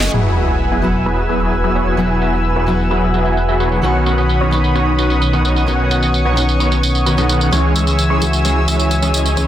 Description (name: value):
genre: EDM, festival progressive house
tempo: 130 BPM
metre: 4/4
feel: straight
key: E major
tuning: A4 = 438 Hz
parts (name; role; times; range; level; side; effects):
- fingerpicked steel-string acoustic guitar; accompaniment; 0.0-9.5 s; D#3 to A4; -21 LUFS; left 2 dB; tape echo
- lush unison pad; sustained chords; 0.0-9.5 s; A3 to E6; -21 LUFS; equal; chorus
- big supersaw lead; riff; 0.0-9.5 s; D#3 to F#5; -19 LUFS; equal; phaser, low-pass filter, tape echo
- wide detuned saw bass; bass; 0.0-9.5 s; E1 to C#2; -17 LUFS; equal; chorus
- house drum kit; drums; 0.0-9.5 s; crash cymbal, hi-hat, tambourine; -23 LUFS; right 2 dB; low-pass filter on snare, low-pass filter on hats, low-pass filter on perc, low-pass filter on cymbals
- sub drop; sound effects; 0.1-2.0 s; none; -20 LUFS; equal; none
room: light reverb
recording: dense, heavily limited modern master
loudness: -13 LUFS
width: side -11 dB against mid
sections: 0.1-9.5 A section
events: impact 0.1-2.0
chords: 0.1 Eadd9; 3.8 Badd9; 7.5 C#m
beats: | 0.14 0.60 1.06 1.52 | 1.98 2.44 2.91 3.37 | 3.83 4.29 4.75 5.21 | 5.68 6.14 6.60 7.06 | 7.52 7.98 8.45 8.91 | 9.37